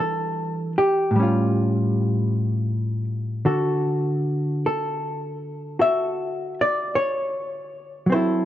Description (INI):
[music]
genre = jazz ballad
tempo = 52 BPM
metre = 4/4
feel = swing 68% on 8ths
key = D major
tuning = A4 = 440 Hz
[part]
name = hollow-body jazz guitar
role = solo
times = 0.0-8.4 s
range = A2 to E5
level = -21 LUFS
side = equal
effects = none
[sound]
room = moderate plate reverb, RT60 3.0 s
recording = worn, warbling old tape, cassette tape, warbly pitch drift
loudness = -21 LUFS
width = side -12 dB against mid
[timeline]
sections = 0.0-8.4 A section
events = none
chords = 0.0 Em7; 1.1 Aaug7; 3.4 Dmaj7